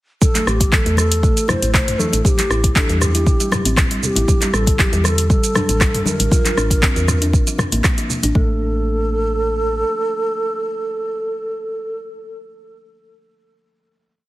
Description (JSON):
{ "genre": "afro house", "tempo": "118 BPM", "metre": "4/4", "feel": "straight", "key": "A phrygian", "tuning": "A4 = 440 Hz", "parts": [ { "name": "breathy mellow bass bansuri", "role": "melody", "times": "0.2-12.0 s", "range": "G4 to C5", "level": "-22 LUFS", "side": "right 1 dB", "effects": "ping-pong delay" }, { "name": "deep house drum kit", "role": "drums", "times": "0.2-8.3 s", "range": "handclaps, hi-hat, rim click, shaker, toms", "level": "-19 LUFS", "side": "equal", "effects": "none" }, { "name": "electronic kick drum", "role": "drums", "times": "0.2-8.5 s", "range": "none", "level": "-16 LUFS", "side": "equal", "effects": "none" }, { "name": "congas", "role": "percussion", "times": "0.2-8.3 s", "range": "none", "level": "-26 LUFS", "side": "left 3 dB", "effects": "none" }, { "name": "kalimba", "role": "arpeggios", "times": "0.3-8.6 s", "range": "D3 to G4", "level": "-24 LUFS", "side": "equal", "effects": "sidechain pumping" }, { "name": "woody FM bass", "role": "bass", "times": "0.5-9.8 s", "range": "A1 to E2", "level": "-20 LUFS", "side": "equal", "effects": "sidechain pumping" } ], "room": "light reverb, digital ambience", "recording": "heavily compressed radio sound", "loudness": "-15 LUFS", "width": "side -17 dB against mid", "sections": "0.2-8.4 drop; 8.4-12.4 final chord", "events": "drop 0.2-8.4", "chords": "0.2 A7(no3); 4.3 Gmadd9/A; 8.4 N.C." }